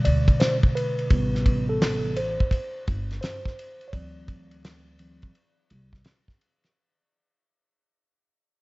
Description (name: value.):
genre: hip hop, jazz-hop.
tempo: 85 BPM.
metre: 4/4.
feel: swing 65% on 16ths.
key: unclear.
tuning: A4 = 439 Hz.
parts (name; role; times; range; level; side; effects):
mellow tine electric piano; accompaniment; 0.0-6.0 s; B2 to D5; -26 LUFS; equal; slow stereo tremolo.
upright bass; bass; 0.1-6.0 s; G1 to D2; -28 LUFS; equal; none.
cloth-damped thuddy drum kit; drums; 0.1-6.7 s; hi-hat, kick drum, ride cymbal, snare drum; -23 LUFS; equal; none.
room: light reverb, studio reverb.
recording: vinyl crackle, nothing above 7.7 kHz.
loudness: -22 LUFS.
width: side -23 dB against mid.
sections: 0.0-6.8 A section.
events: fade-out 0.0-6.8; tine electric piano solo 0.0-6.8.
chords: 0.0 E7 (rootless); 1.1 Am7; 3.9 D7.